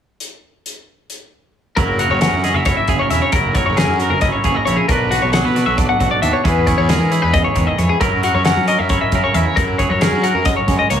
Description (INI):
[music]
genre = math rock and midwest emo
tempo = 269 BPM (eighths)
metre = 7/8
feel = straight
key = unclear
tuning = A4 = 440 Hz
[part]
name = loose indie drum kit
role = drums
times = 0.2-11.0 s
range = hi-hat, kick drum, snare drum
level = -21 LUFS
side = equal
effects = none
[part]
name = twangy electric guitar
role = accompaniment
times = 1.8-11.0 s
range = B2 to B4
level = -20 LUFS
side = right 8 dB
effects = none
[part]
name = twelve-string electric guitar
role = arpeggios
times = 1.8-11.0 s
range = F#4 to F#5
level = -18 LUFS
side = left 6 dB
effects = analog delay
[part]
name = fuzz picked electric bass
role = bass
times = 1.8-11.0 s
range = E1 to F#3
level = -19 LUFS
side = equal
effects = overdrive
[sound]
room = light reverb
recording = small room ambience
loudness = -13 LUFS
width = side -9 dB against mid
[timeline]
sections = 0.2-1.8 A section; 1.8-11.0 B section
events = none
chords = 0.2 N.C.; 1.8 F#7; 4.9 Bmadd9; 6.4 E6; 8.0 F#7